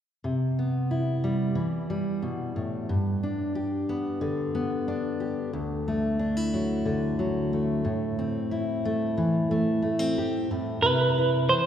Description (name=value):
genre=folk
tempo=91 BPM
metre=4/4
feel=straight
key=unclear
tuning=A4 = 441 Hz
part: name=fingerpicked steel-string acoustic guitar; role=accompaniment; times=0.2-11.7 s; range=D2 to G4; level=-25 LUFS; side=equal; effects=none
part: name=clean electric guitar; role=melody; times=10.8-11.7 s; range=B4 to C5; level=-21 LUFS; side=right 2 dB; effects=tremolo
room=wet church reverb, RT60 3.1 s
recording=recorded in a church or concert hall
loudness=-25 LUFS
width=side -9 dB against mid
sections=0.2-10.8 A section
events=none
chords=0.2 Cmaj7; 2.9 G; 5.5 Dadd9; 7.9 Am; 10.8 Cmaj7